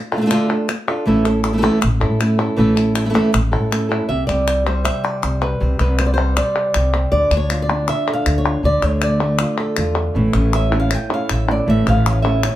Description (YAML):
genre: flamenco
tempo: 158 BPM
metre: 4/4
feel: straight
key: unclear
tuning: A4 = 440 Hz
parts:
  - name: flamenco guitar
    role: melody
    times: 0.1-12.6 s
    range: A2 to G5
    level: -18 LUFS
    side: right 1 dB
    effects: plate reverb
  - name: palmas hand claps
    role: percussion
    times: 0.1-12.6 s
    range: none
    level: -23 LUFS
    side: left 4 dB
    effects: none
  - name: upright bass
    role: bass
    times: 1.1-12.5 s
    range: A1 to A2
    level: -19 LUFS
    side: equal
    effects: none
  - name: flamenco guitar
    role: stabs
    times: 10.1-12.5 s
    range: E3 to E4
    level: -24 LUFS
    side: right 3 dB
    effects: none
room: wet studio ambience, RT60 0.5 s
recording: heard from further back in the room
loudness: -15 LUFS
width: side -13 dB against mid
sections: 0.0-4.1 A section; 4.1-12.6 B section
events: none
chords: 0.0 Dm; 1.1 A; 4.1 Csus2; 7.1 Dm; 10.1 A